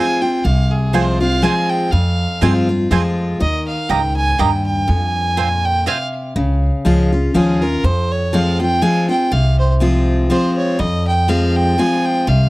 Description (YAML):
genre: bluegrass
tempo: 122 BPM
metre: 3/4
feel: swing 55% on 8ths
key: F minor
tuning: A4 = 440 Hz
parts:
  - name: warm fiddle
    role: melody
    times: 0.0-12.5 s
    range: Ab4 to Ab5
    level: -20 LUFS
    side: right 2 dB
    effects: tape echo
  - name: picked steel-string acoustic guitar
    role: accompaniment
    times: 0.0-12.5 s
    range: F2 to F4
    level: -18 LUFS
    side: left 1 dB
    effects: none
  - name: mandolin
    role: stabs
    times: 0.0-6.0 s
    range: Bb3 to Bb5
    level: -19 LUFS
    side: right 8 dB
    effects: none
  - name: upright bass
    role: bass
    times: 0.4-12.5 s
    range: C2 to G2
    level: -17 LUFS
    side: equal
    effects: none
room: little or no reverb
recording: dry, close 1970s-style studio recording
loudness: -14 LUFS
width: side -19 dB against mid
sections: 0.0-6.4 A section; 6.4-12.5 A section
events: none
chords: 0.0 Fm; 3.4 Eb; 4.9 Fm; 6.4 Db; 7.8 Fm